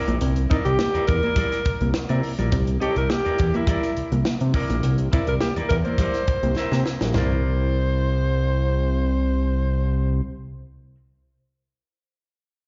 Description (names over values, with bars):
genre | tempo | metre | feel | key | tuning
funk | 104 BPM | 4/4 | straight | C mixolydian | A4 = 442 Hz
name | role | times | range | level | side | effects
clean electric guitar | accompaniment | 0.0-11.0 s | E4 to E5 | -33 LUFS | equal | spring reverb, plate reverb
mellow electric guitar | riff | 0.1-7.3 s | G3 to C4 | -32 LUFS | equal | slapback echo
fat analog bass | bass | 0.1-10.2 s | Bb1 to C3 | -24 LUFS | equal | none
crisp fusion drum kit | drums | 0.1-7.3 s | hi-hat, kick drum, snare drum, toms | -28 LUFS | equal | none
warm alto saxophone | melody | 0.5-10.2 s | Eb4 to C5 | -28 LUFS | equal | plate reverb
room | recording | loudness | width
little or no reverb | live gig heard through the venue's PA, recital hall reverb, nothing above 7.5 kHz | -22 LUFS | mono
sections
0.0-7.1 A section; 7.1-9.5 B section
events
drum fill 6.6-7.1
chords
0.0 C9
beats
| 0.21 0.79 1.37 1.95 | 2.53 3.10 3.68 4.26 | 4.84 5.42 5.99 6.57 | 7.15 7.72 8.30 8.88